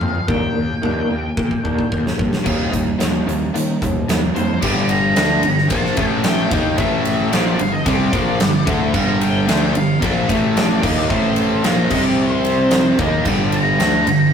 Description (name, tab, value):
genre	quiet-loud alternative rock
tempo	111 BPM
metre	4/4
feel	straight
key	G minor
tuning	A4 = 440 Hz
part	octave-fuzz lead guitar	melody	0.0-14.3 s	A4 to Bb5	-24 LUFS	left 1 dB	distortion
part	electric guitar through a small old amp	arpeggios	0.0-2.4 s	Bb2 to D4	-22 LUFS	equal	tremolo
part	fuzz picked electric bass	bass	0.0-14.3 s	G1 to Eb3	-24 LUFS	equal	overdrive
part	huge arena drum kit	drums	0.0-14.2 s	crash cymbal, hi-hat, kick drum, ride cymbal, snare drum, toms	-20 LUFS	equal	none
part	raw garage guitar	riff	2.4-14.3 s	G2 to Eb4	-21 LUFS	left 3 dB	overdrive
part	sludgy distorted guitar	riff	2.5-14.3 s	G2 to Eb4	-22 LUFS	right 4 dB	overdrive
part	distorted electric guitar	riff	4.6-14.3 s	G2 to Eb4	-22 LUFS	right 1 dB	distortion
room	wet booth ambience, RT60 0.2 s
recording	rough rehearsal-room recording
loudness	-15 LUFS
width	side -7 dB against mid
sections	0.0-2.5 A section; 2.5-4.6 B section; 4.6-14.3 C section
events	half time 0.0-2.5; drum fill 1.4-2.5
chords	0.3 Ebmaj7; 2.5 Eb; 4.6 Gm; 6.0 A5; 6.5 Gm; 6.8 A5; 7.3 Gm; 10.3 A5; 10.8 Bbadd11/Eb; 11.1 A5; 11.6 Bb5; 11.9 C5; 13.0 Gm